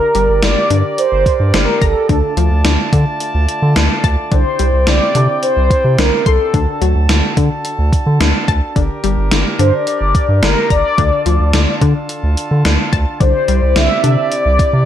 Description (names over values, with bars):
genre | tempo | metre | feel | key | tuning
synth-pop | 108 BPM | 4/4 | straight | G dorian | A4 = 441 Hz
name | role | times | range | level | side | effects
mellow synth brass | melody | 0.0-14.9 s | A4 to E5 | -16 LUFS | equal | chorus, tape echo
clear brass ensemble | sustained chords | 0.0-14.9 s | C3 to A5 | -23 LUFS | right 2 dB | none
analog pluck | arpeggios | 0.0-14.2 s | D3 to C6 | -21 LUFS | left 10 dB | chorus, tape echo
round analog bass | bass | 0.1-14.9 s | G1 to D3 | -14 LUFS | equal | none
gated 80s digital drum machine | drums | 0.1-14.7 s | hi-hat, kick drum, snare drum | -16 LUFS | right 1 dB | gated reverb, gated reverb snare, overdrive
room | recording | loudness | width
light reverb | none | -11 LUFS | side -10 dB against mid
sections
0.0-14.9 A section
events
none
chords
0.0 Gm; 2.1 Dm; 4.3 Cadd9; 6.5 D; 8.8 Gm; 11.0 Dm; 13.2 Cadd9